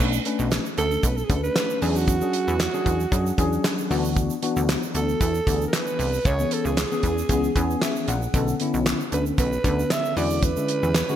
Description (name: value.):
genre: early-eighties boogie funk.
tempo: 115 BPM.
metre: 4/4.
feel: straight.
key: B dorian.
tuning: A4 = 442 Hz.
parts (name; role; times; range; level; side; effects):
tine electric piano; accompaniment; 0.0-11.2 s; D3 to G#5; -26 LUFS; left 3 dB; lush chorus.
plucky analog bass; bass; 0.0-11.0 s; A#1 to F#2; -25 LUFS; equal; none.
egg shaker; percussion; 0.0-11.2 s; none; -38 LUFS; right 13 dB; none.
damped 70s drum kit; drums; 0.3-11.1 s; handclaps, hi-hat, kick drum, snare drum; -25 LUFS; equal; gated reverb.
breathy alto saxophone; melody; 0.8-11.2 s; F#4 to E5; -27 LUFS; right 3 dB; none.
room: moderate plate reverb, RT60 2.6 s.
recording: bright 1980s-style digital production.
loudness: -21 LUFS.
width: side -10 dB against mid.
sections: 0.0-11.2 A section.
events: tine electric piano fill 7.3-8.3.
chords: 0.0 Bm9; 1.8 E13; 3.9 D69; 6.3 C#m7; 8.3 Bm9; 10.2 E13.